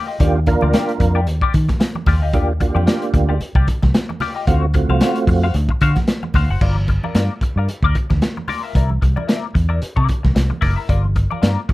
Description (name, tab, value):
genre	funk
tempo	112 BPM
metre	4/4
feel	swing 56% on 16ths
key	unclear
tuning	A4 = 441 Hz
part	semi-hollow electric guitar	accompaniment	0.0-11.7 s	E4 to F#5	-24 LUFS	left 6 dB	wah, analog chorus
part	mellow tonewheel organ	stabs	0.2-5.5 s	A3 to Bb4	-20 LUFS	right 4 dB	overdrive, chorus vibrato, slow rotary speaker
part	vintage muted fingered electric bass	bass	0.2-11.7 s	F#1 to Eb3	-17 LUFS	equal	none
part	crunchy breakbeat drum kit	drums	0.2-11.7 s	crash cymbal, hi-hat, kick drum, snare drum	-19 LUFS	equal	none
part	congas	percussion	0.2-11.7 s	none	-30 LUFS	right 4 dB	none
room	little or no reverb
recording	rough home demo mix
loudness	-15 LUFS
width	side -18 dB against mid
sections	0.0-6.6 A section; 6.6-11.7 B section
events	none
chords	0.0 Ebmaj9; 4.5 D7#9; 6.6 Gm7; 8.8 C9; 10.9 Gm7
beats	| 0.20 0.74 1.27 1.80 | 2.34 2.87 3.41 3.94 | 4.48 5.01 5.54 6.08 | 6.61 7.15 7.68 8.22 | 8.75 9.29 9.82 10.36 | 10.89 11.43